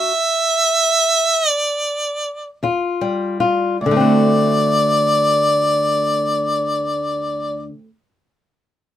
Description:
acoustic country blues, solo or duo; free time; D mixolydian; A4 = 440 Hz
clear harmonica; melody; 0.0-7.6 s; D5 to E5; -16 LUFS; equal
fingerpicked old ladder-braced acoustic guitar; accompaniment; 0.0-7.9 s; D2 to F#4; -18 LUFS; left 1 dB
moderate booth ambience, RT60 0.2 s; minimal, uncompressed stereo recording; -15 LUFS; side -11 dB against mid
0.0-3.8 A section; 3.8-8.8 B section
slowing down 0.0-3.8; stop 0.0-2.6
0.0 D; 2.6 Ebadd9; 3.8 D7

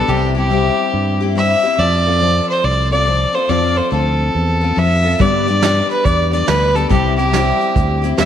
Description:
honky-tonk and classic country; 141 BPM; 4/4; swing 64% on 8ths; C major; A4 = 440 Hz
clear fiddle; melody; 0.0-8.3 s; G4 to E5; -16 LUFS; right 1 dB
picked steel-string acoustic guitar; accompaniment; 0.0-8.3 s; G2 to A4; -19 LUFS; left 8 dB
fingered electric bass; bass; 0.1-8.3 s; C2 to G2; -17 LUFS; right 1 dB
soft brush drum kit; drums; 5.2-8.3 s; hi-hat, kick drum, snare drum; -19 LUFS; right 2 dB
moderate echo chamber reverb, RT60 1.6 s, small room ambience; 1960s-style stereo, lossy compression artefacts; -13 LUFS; side -9 dB against mid
0.0-8.3 A section
0.1 C; 1.8 F; 5.2 G; 6.9 C

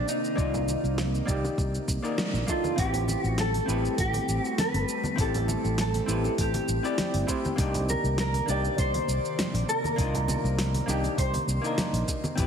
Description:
sunset chillout; 100 BPM; 4/4; straight; A4 = 440 Hz
mellow electric guitar; melody; 0.0-11.7 s; Eb4 to D5; -30 LUFS; equal; lush chorus, digital delay
vintage hollow-body jazz guitar; accompaniment; 0.0-12.5 s; Eb3 to D5; -32 LUFS; left 1 dB; auto-pan, tape echo
airy breathy pad; sustained chords; 0.0-12.5 s; C3 to D5; -36 LUFS; equal; chorus
fretless electric bass; bass; 0.0-12.5 s; G1 to C2; -29 LUFS; equal
smooth R&B drum kit; drums; 0.1-12.5 s; hi-hat, shaker, snare drum; -33 LUFS; equal
electronic kick drum; drums; 0.4-12.5 s; -30 LUFS; equal
congas and bongos; percussion; 0.5-12.4 s; -37 LUFS; right 1 dB
wet recital hall reverb, RT60 1.6 s; heavily compressed radio sound, multiband compression; -24 LUFS; side -7 dB against mid
0.0-2.8 A section; 2.8-12.5 B section
band accent 2.2
0.0 Cm9; 2.8 Am9; 7.6 Cm9

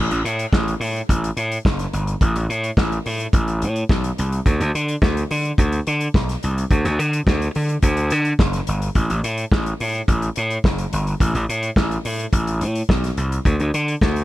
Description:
disco; 107 BPM; 4/4; straight; A dorian; A4 = 444 Hz
gritty slap bass; bass; 0.0-14.2 s; F#1 to D3; -20 LUFS; equal; overdrive
warm soul drum kit; drums; 0.1-14.2 s; hi-hat, kick drum, snare drum; -21 LUFS; equal
little or no reverb; -18 LUFS; side -16 dB against mid
0.0-14.2 A section

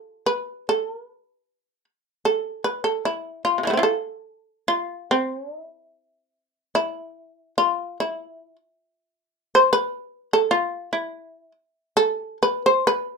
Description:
japanese traditional, Japanese chamber music; 68-79 BPM; 2/4; rubato; A hirajoshi; A4 = 440 Hz
shamisen; solo; 0.0-13.2 s; C3 to C5; -20 LUFS; equal
light reverb; minimal, uncompressed stereo recording; -21 LUFS; side -4 dB against mid
0.0-5.6 A section; 5.6-13.2 B section

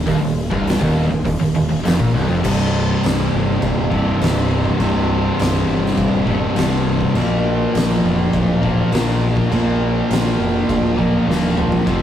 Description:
stoner and doom metal; 102 BPM; 4/4; straight; C minor; A4 = 440 Hz
thick fuzz guitar; riff; 0.0-12.0 s; C2 to Bb3; -22 LUFS; left 4 dB; distortion
thick fuzz guitar; riff; 0.0-12.0 s; C2 to Bb3; -21 LUFS; right 2 dB; distortion
tight distorted guitar; riff; 0.0-12.0 s; C2 to Bb3; -22 LUFS; equal; distortion
growling fingered electric bass; bass; 0.0-12.0 s; C1 to Bb1; -23 LUFS; equal; overdrive
oversized low-tuned drum kit; drums; 0.1-12.0 s; crash cymbal, hi-hat, kick drum, snare drum, toms; -22 LUFS; equal
moderate small room reverb, RT60 0.5 s; rough rehearsal-room recording; -15 LUFS; side -10 dB against mid
0.0-2.4 A section; 2.4-12.0 B section
drum fill 11.3-11.9
0.0 Eb5; 2.4 Cm; 7.2 Bb

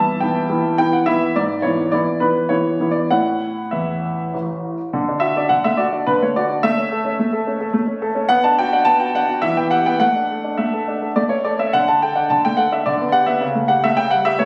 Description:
classical-period piano sonatina; 97-109 BPM; 3/4; rubato; D major; A4 = 440 Hz
clear concert grand piano; solo; 0.0-14.5 s; A1 to A5; -18 LUFS; equal
moderate recital hall reverb, RT60 1.3 s; recorded on a phone in the room, studio reverb; -18 LUFS; mono
0.0-4.9 A section; 4.9-14.5 B section
0.0 Em/G; 1.4 E/G#; 3.1 A; 4.9 D; 6.6 A; 8.3 Bm; 9.4 Em; 10.0 Asus4; 11.2 A; 11.7 D5; 12.9 G/D; 13.4 A7/C#

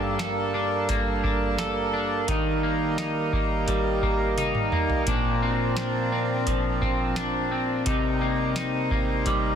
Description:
dream pop; 86 BPM; 4/4; straight; Bb major; A4 = 439 Hz
hand-pumped harmonium; sustained chords; 0.0-9.6 s; F3 to Bb4; -28 LUFS; right 3 dB
electric guitar at the edge of break-up; arpeggios; 0.0-9.6 s; G2 to A4; -26 LUFS; left 2 dB; wide subtle chorus, digital delay
booming analog drum machine; drums; 0.2-9.4 s; hi-hat, kick drum, snare drum, toms; -29 LUFS; equal
moderate huge ambient reverb, RT60 6.8 s; dense, heavily limited modern master; -23 LUFS; side -8 dB against mid
0.0-9.6 A section
drum fill 4.4-5.1
0.0 Gmadd9; 2.3 Eb; 5.1 Bbadd9; 7.9 Cm7

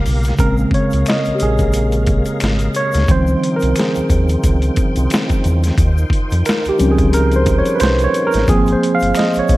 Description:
R&B, neo-soul; 89 BPM; 4/4; swing 57% on 16ths; Bb dorian; A4 = 440 Hz
tine electric piano; accompaniment; 0.0-9.6 s; Db3 to F5; -16 LUFS; right 1 dB; medium stereo tremolo
tonewheel organ; sustained chords; 0.0-9.6 s; Db3 to G5; -26 LUFS; equal; overdrive, chorus vibrato, slow rotary speaker
round analog bass; bass; 0.0-9.6 s; G1 to F2; -16 LUFS; equal
boom bap sampler-style drum kit; drums; 0.1-9.6 s; hi-hat, kick drum, snare drum; -18 LUFS; equal; overdrive
egg shaker and finger snaps; percussion; 0.1-9.6 s; -33 LUFS; left 4 dB
light reverb, digital ambience; vinyl crackle; -13 LUFS; side -18 dB against mid
0.4-9.6 A section
tine electric piano solo 0.4-9.6
0.4 Bbm9; 3.1 Dbmaj9#11; 5.8 Eb13; 8.5 Ab6

